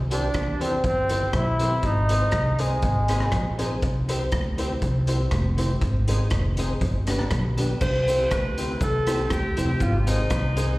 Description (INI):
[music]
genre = ska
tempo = 120 BPM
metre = 4/4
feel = swing 53% on 8ths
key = C major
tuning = A4 = 435 Hz
[part]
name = upright bass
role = bass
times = 0.0-10.7 s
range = F1 to E2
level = -24 LUFS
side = equal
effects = none
[part]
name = brilliant trombone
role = melody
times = 0.1-3.6 s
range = Ab3 to E4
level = -25 LUFS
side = equal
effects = slapback echo
[part]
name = clean electric guitar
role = accompaniment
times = 0.1-10.7 s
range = D4 to C5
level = -33 LUFS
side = right 1 dB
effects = ensemble chorus, slapback echo
[part]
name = warm upright piano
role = stabs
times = 0.1-10.7 s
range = B3 to C5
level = -33 LUFS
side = left 2 dB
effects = slapback echo
[part]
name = raw garage drum kit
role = drums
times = 0.1-10.7 s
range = crash cymbal, hi-hat, kick drum, rim click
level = -28 LUFS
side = equal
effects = none
[part]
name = breathy alto saxophone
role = melody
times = 7.8-10.8 s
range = Eb4 to C5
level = -26 LUFS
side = equal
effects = slapback echo
[part]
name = cabasa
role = percussion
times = 7.8-10.7 s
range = none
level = -48 LUFS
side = right 1 dB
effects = none
[sound]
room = moderate club reverb, RT60 0.5 s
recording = live gig heard through the venue's PA, recital hall reverb, vinyl crackle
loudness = -21 LUFS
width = side -19 dB against mid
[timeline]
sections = 0.0-7.8 A section; 7.8-10.8 B section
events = alto saxophone solo 7.8-10.8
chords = 0.0 C; 1.8 Ab; 3.8 C; 5.8 Ab; 6.8 G; 7.8 C; 9.8 Ab